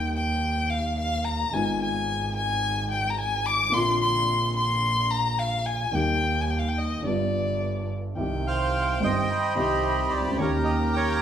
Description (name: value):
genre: tango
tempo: 109 BPM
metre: 4/4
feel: rubato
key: Eb major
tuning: A4 = 439 Hz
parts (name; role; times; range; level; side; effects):
- warm violin; second line; 0.0-11.2 s; D5 to D6; -26 LUFS; left 2 dB; none
- dark upright piano; accompaniment; 0.0-11.2 s; G1 to G4; -30 LUFS; left 1 dB; none
- warm double bass; bass; 0.0-11.2 s; G1 to Eb2; -29 LUFS; right 1 dB; none
- bandoneon; melody; 8.5-11.2 s; G4 to G5; -25 LUFS; right 4 dB; none
room: wet large studio reverb, RT60 1.0 s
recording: band playing live in one room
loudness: -23 LUFS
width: side -9 dB against mid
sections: 0.0-8.2 A section; 8.2-11.2 B section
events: violin solo 0.0-8.2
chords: 0.0 Eb; 1.5 Abm6; 3.7 Bbadd9; 5.9 Eb; 7.0 G7; 8.2 Cm; 10.4 Eb7